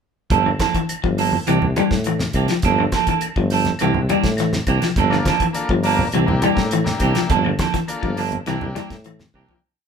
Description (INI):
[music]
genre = afrobeat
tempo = 103 BPM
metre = 4/4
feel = straight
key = G dorian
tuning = A4 = 440 Hz
[part]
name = semi-hollow electric guitar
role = stabs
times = 0.3-9.5 s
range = E3 to A4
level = -21 LUFS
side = right 9 dB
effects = none
[part]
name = mellow tuba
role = bass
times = 0.3-9.6 s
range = G1 to A2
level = -22 LUFS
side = equal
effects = none
[part]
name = damped 70s drum kit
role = drums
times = 0.3-9.6 s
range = hi-hat, kick drum, snare drum, toms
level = -24 LUFS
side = equal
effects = none
[part]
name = congas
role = percussion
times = 0.3-9.3 s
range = none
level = -26 LUFS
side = right 1 dB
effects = none
[part]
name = semi-hollow electric guitar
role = arpeggios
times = 0.5-9.6 s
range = D3 to G3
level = -23 LUFS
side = left 6 dB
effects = none
[part]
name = claves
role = percussion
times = 0.5-9.5 s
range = none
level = -35 LUFS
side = left 2 dB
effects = none
[part]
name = combo organ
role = accompaniment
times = 5.1-9.6 s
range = Bb3 to Bb4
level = -26 LUFS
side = left 3 dB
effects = none
[sound]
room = moderate large studio reverb, RT60 1.0 s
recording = band playing live in one room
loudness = -17 LUFS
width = side -6 dB against mid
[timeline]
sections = 0.3-9.6 groove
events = fade-out 7.3-9.6; drum fill 9.3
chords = 0.3 Gm9; 1.5 C9; 2.6 Gm9; 3.8 C9; 5.0 Gm9; 6.1 C9; 7.3 Gm9; 8.5 C9